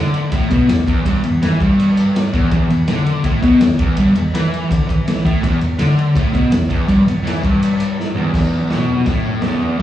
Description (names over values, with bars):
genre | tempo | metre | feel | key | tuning
garage rock duo or trio | 164 BPM | 4/4 | straight | E minor | A4 = 441 Hz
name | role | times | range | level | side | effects
fuzz guitar | riff | 0.0-9.8 s | E2 to E3 | -15 LUFS | equal | distortion, slapback echo
raw garage drum kit | drums | 0.1-9.8 s | crash cymbal, kick drum, ride cymbal, snare drum, toms | -18 LUFS | equal | vintage 12-bit sampler grit
room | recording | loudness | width
moderate lush hall reverb, RT60 2.6 s | live gig heard through the venue's PA, club reverb, small room ambience | -13 LUFS | side -12 dB against mid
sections
0.0-8.3 A section; 8.3-9.8 B section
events
drum fill 8.0-8.3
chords
none